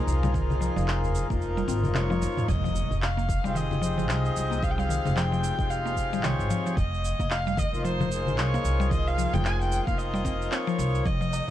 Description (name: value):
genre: organic downtempo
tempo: 112 BPM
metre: 4/4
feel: swing 59% on 16ths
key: F minor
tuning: A4 = 440 Hz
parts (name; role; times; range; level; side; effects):
- pedal harmonium; accompaniment; 0.0-11.1 s; C3 to Bb4; -33 LUFS; left 4 dB; sidechain pumping, tape echo
- airy breathy pad; sustained chords; 0.0-2.4 s; Eb4 to Bb5; -38 LUFS; left 1 dB; chorus, sidechain pumping
- mallet-like synth pluck; arpeggios; 0.0-11.5 s; C3 to C4; -33 LUFS; equal; chorus, cassette tape, tape echo
- upright bass; bass; 0.1-11.5 s; F1 to F2; -28 LUFS; equal; none
- organic electronic drum kit; drums; 0.1-11.5 s; cabasa, congas, handclaps, toms; -33 LUFS; left 1 dB; none
- tabla; percussion; 0.1-2.5, 11.2-11.5 s; none; -38 LUFS; left 2 dB; none
- electronic kick drum; drums; 0.3-11.5 s; none; -30 LUFS; equal; none
- rich kamancheh; melody; 2.0-11.5 s; C5 to Ab5; -31 LUFS; equal; ping-pong delay
- impact; sound effects; 2.5-4.6 s; none; -37 LUFS; right 1 dB; none
room: studio ambience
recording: dark, warm production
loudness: -24 LUFS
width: side -12 dB against mid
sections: 0.0-2.5 A section; 2.5-11.5 B section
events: kick drops out 1.4-2.5; drum fill 1.9-2.5; impact 2.5-4.6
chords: 0.0 Fm7